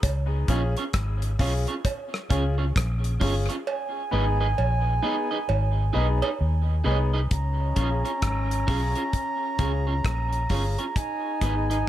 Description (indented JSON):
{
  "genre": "dub reggae",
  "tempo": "66 BPM",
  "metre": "4/4",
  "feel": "swing 62% on 16ths",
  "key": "unclear",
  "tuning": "A4 = 438 Hz",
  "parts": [
    { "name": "vintage muted fingered electric bass", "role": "bass", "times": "0.0-11.8 s", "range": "G1 to D#2", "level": "-24 LUFS", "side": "equal", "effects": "none" },
    { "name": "damped 70s drum kit", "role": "drums", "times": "0.0-11.9 s", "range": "hi-hat, kick drum, rim click", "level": "-27 LUFS", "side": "equal", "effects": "none" },
    { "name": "cowbell", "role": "percussion", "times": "0.0-6.4 s", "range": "none", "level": "-33 LUFS", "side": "right 6 dB", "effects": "tape echo" },
    { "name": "electric guitar at the edge of break-up", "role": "accompaniment", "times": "0.5-11.8 s", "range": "C#4 to D#5", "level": "-32 LUFS", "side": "right 4 dB", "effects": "wide subtle chorus, tape echo" },
    { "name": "warm upright piano", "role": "stabs", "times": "0.5-11.7 s", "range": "B3 to G#4", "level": "-34 LUFS", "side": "left 4 dB", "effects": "tape echo" },
    { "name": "mellow concert flute", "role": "melody", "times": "3.7-11.9 s", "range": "G#5 to A#5", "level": "-30 LUFS", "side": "right 5 dB", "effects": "tape echo" },
    { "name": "clear trombone", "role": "second line", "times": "7.3-11.9 s", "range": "C#4 to D#4", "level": "-34 LUFS", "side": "left 6 dB", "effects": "tape echo" }
  ],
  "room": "light reverb, small room reverb",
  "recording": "none",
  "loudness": "-23 LUFS",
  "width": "side -12 dB against mid",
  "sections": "0.0-7.3 A section; 7.3-11.9 B section",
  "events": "break 0.0-3.7; part muted 3.7-7.3",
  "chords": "0.0 C#; 3.7 G#m; 7.3 C#; 11.0 G#m"
}